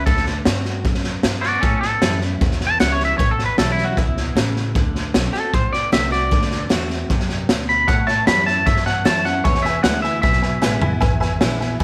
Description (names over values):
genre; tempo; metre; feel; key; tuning
rockabilly; 153 BPM; 4/4; straight; A mixolydian; A4 = 440 Hz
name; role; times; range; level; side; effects
twangy electric guitar; melody; 0.0-11.0 s; C#4 to B5; -23 LUFS; equal; tape echo
picked steel-string acoustic guitar; accompaniment; 0.0-11.8 s; E2 to F#4; -30 LUFS; equal; none
upright bass; bass; 0.0-11.8 s; G#1 to A2; -26 LUFS; equal; none
raw garage drum kit; drums; 0.1-11.8 s; hi-hat, kick drum, snare drum, toms; -22 LUFS; equal; none
honky-tonk upright piano; accompaniment; 7.9-11.8 s; B4 to A5; -29 LUFS; equal; none
room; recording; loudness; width
light reverb, small room reverb; none; -19 LUFS; mono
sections
0.0-11.8 A section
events
drum fill 10.6-11.0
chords
0.1 D7; 1.6 A7; 4.8 D7; 7.9 A7; 9.4 E7